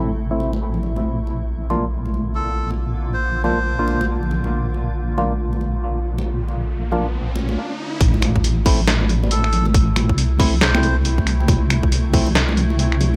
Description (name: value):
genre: deep dubstep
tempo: 138 BPM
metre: 4/4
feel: swing 61% on 16ths, half-time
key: A phrygian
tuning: A4 = 440 Hz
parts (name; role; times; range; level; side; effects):
- granular cloud pad; sustained chords; 0.0-13.2 s; C3 to F4; -32 LUFS; equal; built-in reverb
- percussive organ stab; stabs; 0.0-12.3 s; A3 to F4; -29 LUFS; equal; chorus, dub echo
- deep soft wobble bass; bass; 0.0-13.2 s; A1 to C2; -23 LUFS; equal; chorus
- congas; percussion; 0.4-13.1 s; none; -29 LUFS; equal; dub echo
- melodica; melody; 2.4-4.1, 9.3-11.0 s; A4 to C5; -30 LUFS; equal; dub echo
- riser and impact; sound effects; 6.0-9.7 s; none; -33 LUFS; equal; none
- electronic kick drum; drums; 8.0-12.2 s; none; -20 LUFS; equal; none
- trip hop sampler-style drum kit; drums; 8.0-13.1 s; finger snaps, hi-hat, snare drum; -24 LUFS; equal; low-pass filter on hats, low-pass filter on snare, low-pass filter on room
room: light reverb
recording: none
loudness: -20 LUFS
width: mono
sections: 0.0-8.0 A section; 8.0-13.2 B section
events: riser 6.0-8.0; drop 8.0-13.2; impact 8.0-9.7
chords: 0.0 Am; 1.1 Bb; 8.0 Am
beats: 0.18 0.61 | 1.05 1.49 1.92 2.35 | 2.79 3.22 3.66 4.09 | 4.53 4.96 5.40 5.83 | 6.27 6.70 7.14 7.57 | 8.01 8.44 8.88 9.31 | 9.75 10.18 10.62 11.05 | 11.48 11.92 12.36 12.79